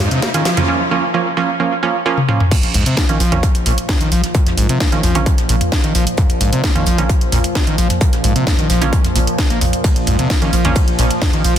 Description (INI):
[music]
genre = driving peak-time techno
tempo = 131 BPM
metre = 4/4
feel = straight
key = Bb minor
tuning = A4 = 439 Hz
[part]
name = screaming distorted acid line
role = riff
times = 0.0-11.5 s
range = Ab2 to Bb3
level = -20 LUFS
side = left 1 dB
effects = distortion, chorus, sidechain pumping, tape echo
[part]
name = riser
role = sound effects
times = 0.0-0.7 s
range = none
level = -24 LUFS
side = right 1 dB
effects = none
[part]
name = airy breathy pad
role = texture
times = 0.0-0.7 s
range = Bb3 to F5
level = -34 LUFS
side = left 2 dB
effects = none
[part]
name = techno drum kit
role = drums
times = 0.1-11.6 s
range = crash cymbal, hi-hat, ride cymbal, snare drum, toms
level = -20 LUFS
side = equal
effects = overdrive, studio reverb
[part]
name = filtered dub chord stab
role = stabs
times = 0.3-10.8 s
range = F3 to Db4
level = -19 LUFS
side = right 5 dB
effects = chorus, sidechain pumping, tape echo
[part]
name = deep dark ambient pad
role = drone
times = 3.6-11.6 s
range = Bb2 to F3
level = -22 LUFS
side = equal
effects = chorus, built-in reverb, sidechain pumping
[part]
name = electronic kick drum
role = drums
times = 2.5-11.3 s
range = none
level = -16 LUFS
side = equal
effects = distortion, overdrive, studio reverb
[part]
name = soft brush drum kit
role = drums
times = 2.5-11.6 s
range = hi-hat, snare drum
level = -31 LUFS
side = right 3 dB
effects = none
[part]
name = saturated sub bass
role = bass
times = 2.6-11.6 s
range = Bb1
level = -19 LUFS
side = equal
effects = tube saturation, sidechain pumping, low-pass filter
[sound]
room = light reverb, digital ambience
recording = dense, heavily limited modern master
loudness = -13 LUFS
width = side -10 dB against mid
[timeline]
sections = 0.0-2.5 A section; 2.5-11.6 B section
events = build-up 0.0-2.5; drum fill 0.0-0.7, 2.2-2.5; riser 0.0-0.7; drop 2.5-11.6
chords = 0.0 Bbm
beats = 0.22 | 0.68 1.14 1.60 2.06 | 2.52 2.97 3.43 3.89 | 4.35 4.80 5.26 5.72 | 6.18 6.64 7.09 7.55 | 8.01 8.47 8.93 9.38 | 9.84 10.30 10.76 11.22